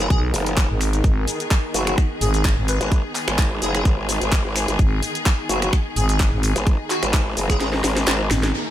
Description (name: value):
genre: bass house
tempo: 128 BPM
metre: 4/4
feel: swing 54% on 16ths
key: G# minor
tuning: A4 = 440 Hz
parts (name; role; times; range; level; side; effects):
- airy dreamy lead; melody; 0.0-7.7 s; F#4 to B4; -28 LUFS; equal; chorus, ping-pong delay
- bright symphonic string section; sustained chords; 0.0-8.7 s; D#3 to A#4; -30 LUFS; left 2 dB; sidechain pumping, low-pass filter
- growl bass; bass; 0.0-8.3 s; F#1 to G#1; -23 LUFS; equal; chorus, overdrive, sidechain pumping
- garage drum kit; drums; 0.0-8.6 s; finger snaps, handclaps, hi-hat, shaker, snare drum; -24 LUFS; equal; overdrive, low-pass filter on hats, low-pass filter on cymbals, low-pass filter on perc, low-pass filter on snare
- granular cloud pad; texture; 0.0-8.7 s; D#4 to A#5; -30 LUFS; left 1 dB; built-in reverb, sidechain pumping
- growling FM bass; bass; 0.1-8.5 s; G#1 to B1; -21 LUFS; equal; sidechain pumping
- electronic kick drum; drums; 0.1-7.6 s; none; -18 LUFS; equal; overdrive
- downlifter; sound effects; 8.5-8.7 s; none; -26 LUFS; right 2 dB; none
room: digital ambience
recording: none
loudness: -18 LUFS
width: side -12 dB against mid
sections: 0.0-8.5 A section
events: drop 0.0-8.5; kick drops out 7.6-8.5; drum fill 7.6-8.5; band accent 8.4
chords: 0.0 G#m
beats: 0.10 0.57 | 1.04 1.51 1.98 2.45 | 2.92 3.38 3.85 4.32 | 4.79 5.26 5.73 6.20 | 6.67 7.13 7.60 8.07 | 8.54